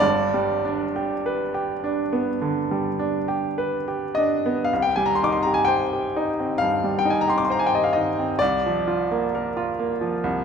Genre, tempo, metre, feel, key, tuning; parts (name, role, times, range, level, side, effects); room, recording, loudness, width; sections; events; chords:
classical, romantic nocturne for solo piano; 48-68 BPM; 4/4; rubato; C minor; A4 = 441 Hz
bright baby grand piano; solo; 0.0-10.4 s; G1 to D6; -20 LUFS; equal
moderate scoring stage reverb, RT60 1.8 s; minimal, uncompressed stereo recording; -20 LUFS; side -6 dB against mid
0.0-4.7 A section; 4.7-10.4 B section
0.0 G; 4.7 Cm; 8.4 Bb/C